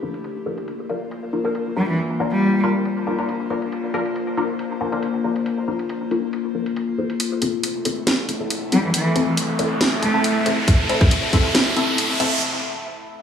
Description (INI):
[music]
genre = deep dubstep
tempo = 138 BPM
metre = 4/4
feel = half-time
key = A phrygian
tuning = A4 = 440 Hz
[part]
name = overtone-sweeping drone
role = sustained chords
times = 0.0-12.4 s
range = A3 to C5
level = -26 LUFS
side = left 4 dB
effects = chorus, built-in reverb
[part]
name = filtered dub chord stab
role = stabs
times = 0.0-12.4 s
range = C4 to C5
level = -25 LUFS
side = left 2 dB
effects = phaser, ensemble chorus, dub echo
[part]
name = garage drum kit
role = drums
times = 0.1-12.3 s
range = hi-hat, snare drum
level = -22 LUFS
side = equal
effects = low-pass filter on hats, low-pass filter on cymbals, low-pass filter on snare
[part]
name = rich cello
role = melody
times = 1.8-2.6, 8.7-10.4 s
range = E3 to A3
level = -22 LUFS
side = equal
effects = dub echo
[part]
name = riser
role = sound effects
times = 8.3-12.4 s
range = none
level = -24 LUFS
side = right 1 dB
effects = none
[part]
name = electronic kick drum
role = drums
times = 10.7-11.4 s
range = none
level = -16 LUFS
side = equal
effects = none
[sound]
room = wet echo chamber reverb, RT60 1.5 s, digital ambience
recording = studio reverb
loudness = -19 LUFS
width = side -8 dB against mid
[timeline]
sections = 0.0-7.2 A section; 7.2-13.2 B section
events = build-up 7.2-13.2; riser 8.3-12.4; break 12.4-13.2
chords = 0.2 Bb; 7.2 Am